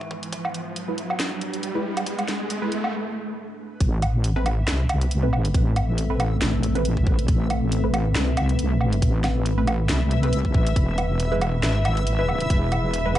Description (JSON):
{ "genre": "deep dubstep", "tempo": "138 BPM", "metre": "4/4", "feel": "swing 56% on 16ths, half-time", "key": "A harmonic minor", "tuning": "A4 = 440 Hz", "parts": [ { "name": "deep dark ambient pad", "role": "sustained chords", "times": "0.0-13.2 s", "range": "G#3 to B4", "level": "-31 LUFS", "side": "left 2 dB", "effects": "chorus, built-in reverb" }, { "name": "electronic kick drum", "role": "drums", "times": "0.0-12.6 s", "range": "none", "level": "-21 LUFS", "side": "equal", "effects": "overdrive, high-pass filter on kick, studio reverb" }, { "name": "riser", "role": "sound effects", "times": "0.0-2.9 s", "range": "none", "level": "-30 LUFS", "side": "right 1 dB", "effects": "none" }, { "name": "backwards swelling texture", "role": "texture", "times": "0.0-13.2 s", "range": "B3 to E5", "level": "-35 LUFS", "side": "left 2 dB", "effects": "built-in reverb" }, { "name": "garage drum kit", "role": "drums", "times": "0.2-13.2 s", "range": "handclaps, hi-hat, snare drum, woodblock", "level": "-28 LUFS", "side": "right 1 dB", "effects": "overdrive, studio reverb" }, { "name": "filtered dub chord stab", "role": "stabs", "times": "0.9-13.2 s", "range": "G#3 to B4", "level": "-31 LUFS", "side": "right 2 dB", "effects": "phaser, dub echo" }, { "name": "wobble bass", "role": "bass", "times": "3.8-13.2 s", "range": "E1 to C2", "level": "-22 LUFS", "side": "equal", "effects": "chorus" } ], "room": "light reverb, digital ambience", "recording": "vinyl crackle, nothing above 11.0 kHz", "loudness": "-20 LUFS", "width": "side -13 dB against mid", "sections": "0.0-3.8 A section; 3.8-13.2 B section", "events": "build-up 0.0-3.8; riser 0.0-2.9; filter sweep on synth stab 0.0-3.8; filter sweep on ambient pad 0.0-3.8; break 2.9-3.8; drop 3.8-13.2", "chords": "0.0 E; 3.8 Amadd9; 10.8 E" }